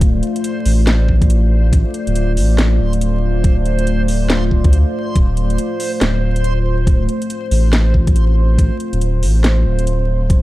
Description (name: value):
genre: deep dubstep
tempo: 140 BPM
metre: 4/4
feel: swing 61% on 16ths, half-time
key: D minor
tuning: A4 = 441 Hz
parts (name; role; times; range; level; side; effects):
- deep dark ambient pad; sustained chords; 0.0-10.4 s; A3 to D5; -22 LUFS; left 1 dB; chorus, built-in reverb
- saturated sub bass; bass; 0.0-10.4 s; D1 to D2; -14 LUFS; equal; none
- electronic kick drum; drums; 0.0-10.4 s; none; -13 LUFS; equal; studio reverb
- garage drum kit; drums; 0.0-10.4 s; hi-hat, snare drum; -21 LUFS; equal; studio reverb
- backwards swelling texture; texture; 0.0-10.4 s; C5; -28 LUFS; right 3 dB; built-in reverb
room: digital ambience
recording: dry, gritty hardware recording, transformer saturation, vinyl crackle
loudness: -13 LUFS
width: side -17 dB against mid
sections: 0.0-10.4 A section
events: none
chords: 0.0 Dm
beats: | 0.01 0.44 0.87 1.30 | 1.73 2.16 2.58 3.01 | 3.44 3.87 4.30 4.73 | 5.16 5.58 6.01 6.44 | 6.87 7.30 7.73 8.16 | 8.59 9.01 9.44 9.87 | 10.30